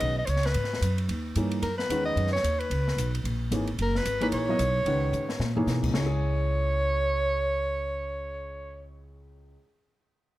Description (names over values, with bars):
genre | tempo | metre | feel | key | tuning
modal jazz | 223 BPM | 4/4 | swing 60% on 8ths | C# dorian | A4 = 441 Hz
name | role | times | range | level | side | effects
breathy soprano saxophone | melody | 0.0-8.9 s | A#4 to D#5 | -29 LUFS | right 1 dB | none
warm baby grand piano | accompaniment | 0.0-9.7 s | C#2 to D#5 | -32 LUFS | left 1 dB | none
upright bass | bass | 0.0-9.5 s | F#1 to B2 | -28 LUFS | equal | none
open jazz drum kit | drums | 0.0-6.0 s | crash cymbal, hi-hat, kick drum, ride cymbal, snare drum, toms | -36 LUFS | left 1 dB | none
room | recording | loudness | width
moderate spring reverb, RT60 1.6 s | none | -25 LUFS | side -16 dB against mid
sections
0.0-5.9 A section; 5.9-8.1 B section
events
drum fill 5.1-5.7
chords
0.0 C#9sus4; 1.6 F#9sus4; 5.9 C#m